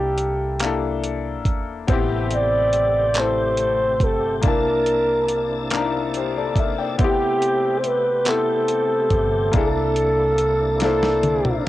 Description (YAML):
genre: slow six-eight R&B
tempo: 47 BPM (dotted quarters)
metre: 6/8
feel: straight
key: unclear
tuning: A4 = 440 Hz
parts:
  - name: breathy flugelhorn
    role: melody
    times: 0.0-11.6 s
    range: G4 to D5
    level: -20 LUFS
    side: right 1 dB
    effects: cassette tape
  - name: warm concert grand piano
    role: accompaniment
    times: 0.0-11.7 s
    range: A3 to A5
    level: -25 LUFS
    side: left 7 dB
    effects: cassette tape
  - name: mellow fretless electric bass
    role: bass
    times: 0.0-11.7 s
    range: E1 to C2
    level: -27 LUFS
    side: right 1 dB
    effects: none
  - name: dusty soul sampler-style drum kit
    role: drums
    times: 0.2-11.7 s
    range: handclaps, hi-hat, kick drum, snare drum, toms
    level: -22 LUFS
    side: right 1 dB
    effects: none
  - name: tonewheel organ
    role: sustained chords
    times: 1.9-11.7 s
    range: C3 to A5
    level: -30 LUFS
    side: right 1 dB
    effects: overdrive, chorus vibrato, slow rotary speaker, cassette tape
room: light reverb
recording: home recording on cassette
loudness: -18 LUFS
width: side -15 dB against mid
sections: 0.0-11.7 A section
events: drum fill 10.8-11.7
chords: 0.0 C13; 1.9 Am9; 4.4 C13; 7.0 Am9; 9.5 C13